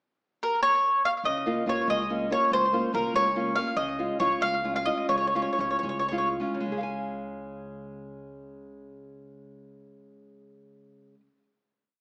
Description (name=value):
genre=italian folk, Italian serenade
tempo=67-96 BPM (dotted quarters)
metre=6/8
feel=straight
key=Db major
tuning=A4 = 438 Hz
part: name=mandolin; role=melody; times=0.4-6.3 s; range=Bb4 to F5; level=-27 LUFS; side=equal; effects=slapback echo
part: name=nylon-string guitar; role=accompaniment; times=1.2-11.4 s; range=Db3 to Ab5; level=-34 LUFS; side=equal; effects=none
part: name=upright bass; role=bass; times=1.2-11.3 s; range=Db2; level=-47 LUFS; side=equal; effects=none
room=moderate recital hall reverb, RT60 1.7 s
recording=small speaker sound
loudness=-27 LUFS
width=mono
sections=0.0-1.2 pickup bar; 1.2-6.7 A section; 6.7-10.2 final chord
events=slowing down 3.8-6.7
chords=0.0 N.C.; 1.2 Db6; 3.8 Db